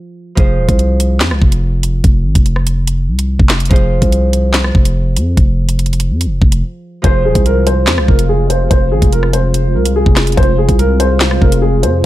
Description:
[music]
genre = hip hop, drill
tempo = 144 BPM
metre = 4/4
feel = half-time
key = F minor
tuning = A4 = 440 Hz
[part]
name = Celtic harp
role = accompaniment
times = 0.0-10.4 s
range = F3 to C5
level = -23 LUFS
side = right 3 dB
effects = low-pass filter
[part]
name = growling 808-style bass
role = bass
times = 0.4-12.0 s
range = Eb1 to F2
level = -13 LUFS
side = equal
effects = none
[part]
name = drill drum kit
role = drums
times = 0.4-11.9 s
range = handclaps, hi-hat, kick drum, rim click, snare drum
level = -12 LUFS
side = equal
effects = none
[part]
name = dark concert grand piano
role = melody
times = 7.0-12.0 s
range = Ab4 to C5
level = -16 LUFS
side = left 1 dB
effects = low-pass filter
[part]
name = sweeping resonant pad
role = sustained chords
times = 7.0-12.1 s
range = C3 to F4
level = -20 LUFS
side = equal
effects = chorus
[sound]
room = digital ambience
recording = none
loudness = -10 LUFS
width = side -15 dB against mid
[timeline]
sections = 0.0-12.1 A section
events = break 0.0-0.4, 6.6-7.0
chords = 0.0 Fm

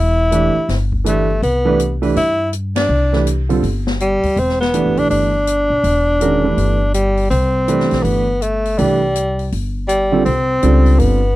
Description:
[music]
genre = modal jazz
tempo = 163 BPM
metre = 4/4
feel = swing 64% on 8ths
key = C major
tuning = A4 = 435 Hz
[part]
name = warm tenor saxophone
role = melody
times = 0.0-11.4 s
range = G3 to E4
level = -17 LUFS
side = equal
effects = none
[part]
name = upright bass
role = bass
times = 0.0-11.4 s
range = E1 to G2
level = -18 LUFS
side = left 1 dB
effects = none
[part]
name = warm concert grand piano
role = accompaniment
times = 0.3-11.2 s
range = D3 to B4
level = -18 LUFS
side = right 4 dB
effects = none
[part]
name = open jazz drum kit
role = drums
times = 0.3-11.1 s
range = hi-hat, kick drum, ride cymbal, snare drum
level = -27 LUFS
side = left 3 dB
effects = none
[sound]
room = little or no reverb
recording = dry, close 1970s-style studio recording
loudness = -13 LUFS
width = side -16 dB against mid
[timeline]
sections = 0.0-11.4 A section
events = band accent 2.7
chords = 0.0 Cmaj9

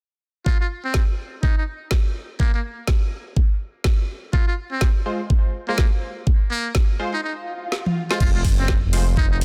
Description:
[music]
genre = bass house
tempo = 124 BPM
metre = 4/4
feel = swing 59% on 16ths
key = F phrygian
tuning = A4 = 442 Hz
[part]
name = trumpet with metal mute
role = melody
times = 0.5-9.4 s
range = Bb3 to F4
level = -31 LUFS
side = equal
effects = delay
[part]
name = electronic kick drum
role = drums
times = 0.5-9.3 s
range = none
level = -21 LUFS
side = equal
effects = none
[part]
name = garage drum kit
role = drums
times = 0.9-9.4 s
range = crash cymbal, hi-hat, snare drum, toms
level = -30 LUFS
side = equal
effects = none
[part]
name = band-passed chord stab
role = stabs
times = 5.1-9.1 s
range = Ab3 to C5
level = -31 LUFS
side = equal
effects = chorus, vintage 12-bit sampler grit, sidechain pumping, delay
[part]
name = swell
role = sound effects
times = 7.4-8.2 s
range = none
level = -35 LUFS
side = equal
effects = none
[part]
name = growling FM bass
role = bass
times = 8.2-9.4 s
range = F1 to Gb1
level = -22 LUFS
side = equal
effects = tube saturation, sidechain pumping
[sound]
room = little or no reverb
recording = dense, heavily limited modern master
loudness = -22 LUFS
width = mono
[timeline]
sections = 0.5-8.2 A section; 8.2-9.4 B section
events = break 7.2-8.2; swell 7.4-8.2; drum fill 7.7-8.2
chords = 0.5 Fm

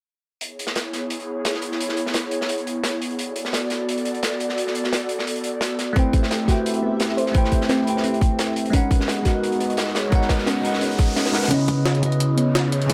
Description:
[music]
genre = liquid drum and bass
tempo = 173 BPM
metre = 4/4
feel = swing 53% on 16ths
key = unclear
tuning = A4 = 440 Hz
[part]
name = airy breathy pad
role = sustained chords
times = 0.5-12.9 s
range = B3 to E5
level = -29 LUFS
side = equal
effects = chorus, sidechain pumping
[part]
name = crunchy breakbeat drum kit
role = drums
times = 0.4-11.5 s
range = hi-hat, snare drum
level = -29 LUFS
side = equal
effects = high-pass filter on hats, high-pass filter on snare, high-pass filter on room
[part]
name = bell-like tine electric piano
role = accompaniment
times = 5.9-12.9 s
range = C#3 to G5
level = -25 LUFS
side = equal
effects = phaser
[part]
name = harp-like synth pluck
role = arpeggios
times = 6.0-12.9 s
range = B3 to C#5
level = -28 LUFS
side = equal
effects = chorus, digital delay
[part]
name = electronic kick drum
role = drums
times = 6.0-12.9 s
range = none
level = -22 LUFS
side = equal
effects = high-pass filter on kick, high-pass filter on room
[part]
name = riser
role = sound effects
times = 9.8-12.9 s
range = none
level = -34 LUFS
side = equal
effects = none
[part]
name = jungle sampler-style drum kit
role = drums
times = 11.5-12.9 s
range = hi-hat, snare drum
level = -27 LUFS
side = equal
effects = high-pass filter on hats, high-pass filter on snare, high-pass filter on room
[sound]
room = light reverb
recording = none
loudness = -22 LUFS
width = mono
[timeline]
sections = 0.4-11.5 A section; 11.5-12.9 B section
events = riser 9.8-11.5, 11.5-12.9; build-up 11.5-12.9; filter sweep on analog synth pad 11.5-12.9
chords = 0.4 C#m7; 3.2 Bm7; 6.0 Am7; 8.7 G#m7; 11.5 C#m7

